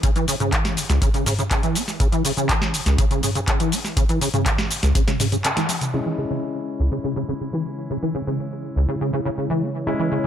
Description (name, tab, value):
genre	acid house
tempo	122 BPM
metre	4/4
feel	straight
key	C# minor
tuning	A4 = 440 Hz
part	acid bass, saw	riff	0.0-10.3 s	C#2 to C#4	-23 LUFS	equal	ensemble chorus, digital delay
part	booming analog drum machine	drums	0.0-5.9 s	handclaps, hi-hat, shaker, snare drum, toms	-23 LUFS	equal	small room ambience
part	electronic kick drum	drums	0.0-5.0 s	none	-22 LUFS	equal	small room ambience
part	warm analog pad	sustained chords	5.9-10.3 s	C#3 to C#5	-30 LUFS	right 1 dB	lush chorus, sidechain pumping
part	warm concert grand piano	stabs	5.9-10.3 s	G#3 to E4	-29 LUFS	left 3 dB	low-pass filter, digital delay
room	light reverb, digital ambience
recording	none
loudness	-19 LUFS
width	side -9 dB against mid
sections	0.0-5.9 A section; 5.9-10.3 B section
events	filter sweep on acid bass 0.0-5.9, 5.9-10.3; break 5.4-5.9; band accent 5.4; drum fill 5.7; filter sweep on analog synth pad 5.9-10.3; filter sweep on grand piano 5.9-10.3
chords	0.0 C#m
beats	| 0.03 0.53 1.02 1.51 | 2.00 2.49 2.98 3.48 | 3.97 4.46 4.95 5.44 | 5.93 6.43 6.92 7.41 | 7.90 8.39 8.89 9.38 | 9.87